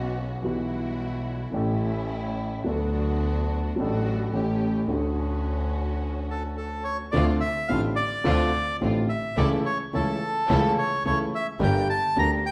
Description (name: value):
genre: tango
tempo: 108 BPM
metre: 4/4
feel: rubato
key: D major, D harmonic minor from 7.1 s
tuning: A4 = 440 Hz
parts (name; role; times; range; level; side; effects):
- dark upright piano; accompaniment; 0.0-12.4 s; G1 to A4; -30 LUFS; equal; none
- dark symphonic string section; stabs; 0.0-12.4 s; G3 to Bb4; -37 LUFS; equal; none
- clear double bass; bass; 0.0-12.4 s; G1 to D2; -31 LUFS; equal; none
- bandoneon; melody; 6.3-12.5 s; A4 to Bb5; -29 LUFS; equal; none
room: wet large studio reverb, RT60 1.2 s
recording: band playing live in one room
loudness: -26 LUFS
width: mono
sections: 0.0-7.1 A section; 7.1-12.5 B section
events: none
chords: 0.4 Emadd9/B; 1.6 A; 2.7 D6; 3.8 D/A; 4.3 A7; 4.9 Dmaj7; 7.1 Dm7; 9.4 A/C#; 11.6 Gm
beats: | 0.43 0.99 1.55 2.11 | 2.67 3.23 3.78 4.34 | 4.90 5.46 6.02 6.58 | 7.14 7.70 8.26 8.82 | 9.38 9.93 10.49 11.05 | 11.60 12.16